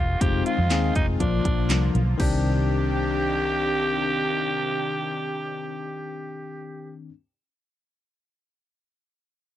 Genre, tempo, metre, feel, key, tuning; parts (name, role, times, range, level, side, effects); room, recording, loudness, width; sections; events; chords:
dance-pop; 121 BPM; 4/4; straight; C minor; A4 = 441 Hz
raspy alto saxophone; melody; 0.0-6.9 s; D4 to G4; -27 LUFS; right 2 dB; slapback echo
soft supersaw; sustained chords; 0.0-6.9 s; C3 to G4; -33 LUFS; equal; sidechain pumping
vintage muted fingered electric bass; bass; 0.0-7.1 s; E1 to F2; -25 LUFS; equal; sidechain pumping
bell-like tine electric piano; accompaniment; 0.2-7.1 s; Eb3 to Ab4; -29 LUFS; left 7 dB; sidechain pumping
house drum kit; drums; 0.2-2.3 s; crash cymbal, handclaps, hi-hat, kick drum, snare drum; -26 LUFS; equal
little or no reverb; dry, close 1970s-style studio recording; -21 LUFS; side -12 dB against mid
0.0-2.2 A section; 2.2-6.2 B section
0.2 Fm7; 1.2 Bb; 2.2 Cmadd9